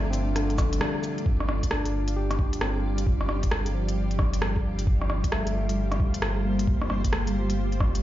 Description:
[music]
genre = future garage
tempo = 133 BPM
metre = 4/4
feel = swing 64% on 16ths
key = unclear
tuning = A4 = 440 Hz
[part]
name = barky tine electric piano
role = accompaniment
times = 0.0-8.0 s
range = D3 to G4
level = -32 LUFS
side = left 1 dB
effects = sidechain pumping, dub echo
[part]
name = granular cloud pad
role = sustained chords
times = 0.0-8.0 s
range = G3 to D5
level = -32 LUFS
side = right 1 dB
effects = built-in reverb, sidechain pumping
[part]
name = warm sub bass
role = bass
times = 0.0-8.0 s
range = G1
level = -28 LUFS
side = equal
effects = sidechain pumping
[part]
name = organic electronic drum kit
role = drums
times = 0.1-8.0 s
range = cabasa, hi-hat, rim click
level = -32 LUFS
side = equal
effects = none
[part]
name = electronic kick drum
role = drums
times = 0.6-7.9 s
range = none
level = -25 LUFS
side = equal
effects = none
[sound]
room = light reverb, digital ambience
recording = played on a big sound system in a bare room, large studio reverb, nothing above 7.5 kHz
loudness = -23 LUFS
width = side -14 dB against mid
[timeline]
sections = 0.0-1.3 A section; 1.3-8.0 B section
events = break 0.8-1.3; band accent 0.8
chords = 0.0 Dm/G; 1.3 Gm7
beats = 0.36 0.81 | 1.26 1.71 2.16 2.62 | 3.07 3.52 3.97 4.42 | 4.87 5.32 5.77 6.22 | 6.67 7.13 7.58

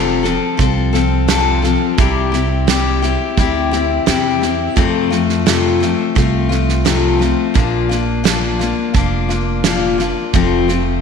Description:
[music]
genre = honky-tonk and classic country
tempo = 86 BPM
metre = 4/4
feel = straight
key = F major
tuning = A4 = 440 Hz
[part]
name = picked steel-string acoustic guitar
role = accompaniment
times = 0.0-11.0 s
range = F2 to A4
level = -16 LUFS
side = left 7 dB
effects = none
[part]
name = upright bass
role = bass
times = 0.0-11.0 s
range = F1 to F2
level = -19 LUFS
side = right 2 dB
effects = none
[part]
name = natural country drum kit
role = drums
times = 0.2-10.8 s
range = hi-hat, kick drum, snare drum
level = -19 LUFS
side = right 6 dB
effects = none
[sound]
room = moderate echo chamber reverb, RT60 2.5 s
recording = 1960s-style stereo with parts hard left and right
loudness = -13 LUFS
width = side -6 dB against mid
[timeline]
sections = 0.0-11.0 A section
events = none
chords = 0.0 F; 2.0 C; 4.8 F; 7.6 Bb; 10.3 F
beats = 0.59 1.28 | 1.98 2.68 3.38 4.07 | 4.77 5.47 6.16 6.86 | 7.56 8.25 8.95 9.64 | 10.34

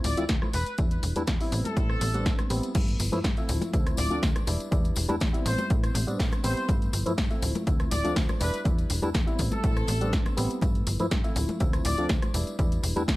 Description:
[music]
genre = filtered disco house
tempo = 122 BPM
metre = 4/4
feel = straight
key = D dorian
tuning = A4 = 439 Hz
[part]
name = clear trumpet section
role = melody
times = 0.0-12.1 s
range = A4 to D5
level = -34 LUFS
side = equal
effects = sidechain pumping, low-pass filter, digital delay
[part]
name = barky reed electric piano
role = accompaniment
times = 0.0-13.0 s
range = F3 to E4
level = -31 LUFS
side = equal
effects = phaser, sidechain pumping, low-pass filter
[part]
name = slap-like FM bass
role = bass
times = 0.0-13.2 s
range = D1 to A2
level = -30 LUFS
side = equal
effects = sidechain pumping, low-pass filter
[part]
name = punchy analog drum machine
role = drums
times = 0.0-13.2 s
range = crash cymbal, hi-hat, rim click, snare drum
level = -33 LUFS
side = equal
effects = sidechain pumping on hats, sidechain pumping on cymbals
[part]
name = tambourine and congas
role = percussion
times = 0.0-13.2 s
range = none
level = -38 LUFS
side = left 3 dB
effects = sidechain pumping on perc, low-pass filter on perc
[part]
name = electronic kick drum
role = drums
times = 0.3-13.2 s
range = none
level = -27 LUFS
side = equal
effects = none
[sound]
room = digital ambience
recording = none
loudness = -24 LUFS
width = side -18 dB against mid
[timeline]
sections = 0.0-2.8 A section; 2.8-13.2 B section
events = drop 2.8-13.2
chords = 0.0 Dm7; 0.5 Em7; 1.5 Am9; 2.8 G13; 3.5 Dm7; 4.5 Em7; 5.5 Am9; 6.7 G13; 7.4 Dm7; 8.4 Em7; 9.4 Am9; 10.6 G13; 11.4 Dm7; 12.3 Em7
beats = 0.29 | 0.79 1.28 1.77 2.26 | 2.75 3.24 3.74 4.23 | 4.72 5.21 5.70 6.20 | 6.69 7.18 7.67 8.16 | 8.65 9.15 9.64 10.13 | 10.62 11.11 11.61 12.10 | 12.59 13.08

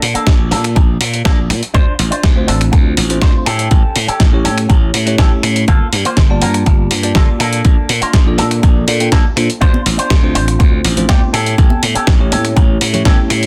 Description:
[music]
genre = nu-disco, nu disco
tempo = 122 BPM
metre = 4/4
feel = straight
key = D minor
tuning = A4 = 439 Hz
[part]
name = electric guitar with an envelope filter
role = riff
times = 0.0-13.3 s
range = Bb3 to C5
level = -23 LUFS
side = equal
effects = lush chorus, low-pass filter, tape echo
[part]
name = glassy slap bass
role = bass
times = 0.0-13.5 s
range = G1 to Bb2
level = -19 LUFS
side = equal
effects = none
[part]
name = dusty soul sampler-style drum kit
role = drums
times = 0.0-13.5 s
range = finger snaps, hi-hat, snare drum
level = -21 LUFS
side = equal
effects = small room ambience
[part]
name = electronic kick drum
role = drums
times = 0.3-13.2 s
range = none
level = -13 LUFS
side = equal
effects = small room ambience
[part]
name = bell-like tine electric piano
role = accompaniment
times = 2.4-13.5 s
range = A3 to A5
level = -21 LUFS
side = equal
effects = phaser, tape echo
[part]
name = congas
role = percussion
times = 9.7-13.2 s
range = none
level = -26 LUFS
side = equal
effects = none
[sound]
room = digital ambience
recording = dense, heavily limited modern master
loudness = -12 LUFS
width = mono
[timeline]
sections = 0.0-13.5 A section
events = none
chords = 0.0 Bbmaj7; 1.7 Dm7; 3.5 A7; 5.7 Gm9; 7.4 Bbmaj7; 9.6 Dm7; 11.3 A7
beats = 0.27 0.76 1.25 | 1.75 2.24 2.73 3.22 | 3.71 4.21 4.70 5.19 | 5.68 6.17 6.67 7.16 | 7.65 8.14 8.63 9.12 | 9.62 10.11 10.60 11.09 | 11.58 12.07 12.57 13.06

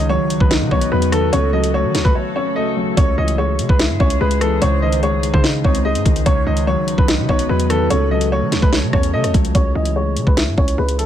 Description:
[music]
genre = hip hop, drill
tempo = 146 BPM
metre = 4/4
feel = half-time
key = C# minor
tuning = A4 = 440 Hz
[part]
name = clear upright piano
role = melody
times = 0.0-11.1 s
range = A4 to D#5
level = -22 LUFS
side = equal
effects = low-pass filter
[part]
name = soft octave-layered synth lead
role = second line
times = 0.0-8.3 s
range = A4 to D#5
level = -28 LUFS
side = equal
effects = chorus, phaser, tape echo
[part]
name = dark grand piano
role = accompaniment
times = 0.0-11.1 s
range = C#2 to C#5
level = -22 LUFS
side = left 2 dB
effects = low-pass filter
[part]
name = glassy FM pad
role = sustained chords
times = 0.0-9.5 s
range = C#3 to C#5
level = -26 LUFS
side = equal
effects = ensemble chorus, built-in reverb
[part]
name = hard-hitting 808-style bass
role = bass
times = 0.0-11.1 s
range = B1 to E3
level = -19 LUFS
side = equal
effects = none
[part]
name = drill drum kit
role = drums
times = 0.3-11.1 s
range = hi-hat, kick drum, rim click, snare drum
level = -17 LUFS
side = equal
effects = vintage 12-bit sampler grit
[sound]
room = little or no reverb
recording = none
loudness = -14 LUFS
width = side -10 dB against mid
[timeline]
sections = 0.0-9.5 A section; 9.5-11.1 B section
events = break 2.2-3.0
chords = 0.0 B/C#; 1.3 F#m/C#; 3.0 C#m; 4.6 G#; 6.3 B/C#; 7.9 F#m/C#; 9.5 C#m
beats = 0.10 0.51 0.92 | 1.33 1.74 2.15 2.56 | 2.97 3.38 3.79 4.21 | 4.62 5.03 5.44 5.85 | 6.26 6.67 7.08 7.49 | 7.91 8.32 8.73 9.14 | 9.55 9.96 10.37 10.78

